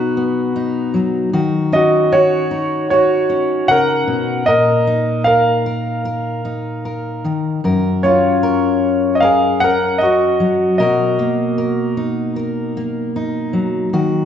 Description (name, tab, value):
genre	acoustic folk-pop ballad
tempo	76 BPM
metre	4/4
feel	straight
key	unclear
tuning	A4 = 440 Hz
part	clear concert grand piano	melody	0.0-12.3 s	D#4 to F#5	-15 LUFS	right 1 dB	none
part	fingerpicked steel-string acoustic guitar	accompaniment	0.0-14.2 s	F#2 to A#4	-18 LUFS	left 2 dB	none
room	wet recital hall reverb, RT60 1.7 s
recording	recorded in a church or concert hall, nothing above 8.0 kHz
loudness	-14 LUFS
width	side -9 dB against mid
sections	0.0-14.2 A section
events	none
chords	0.0 B; 1.3 D#m7; 4.5 A#sus4; 7.6 F#; 10.8 Bmaj7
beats	0.56 | 1.34 2.12 2.91 3.69 | 4.47 5.26 6.05 6.84 | 7.64 8.43 9.22 10.02 | 10.80 11.59 12.37 13.16 | 13.94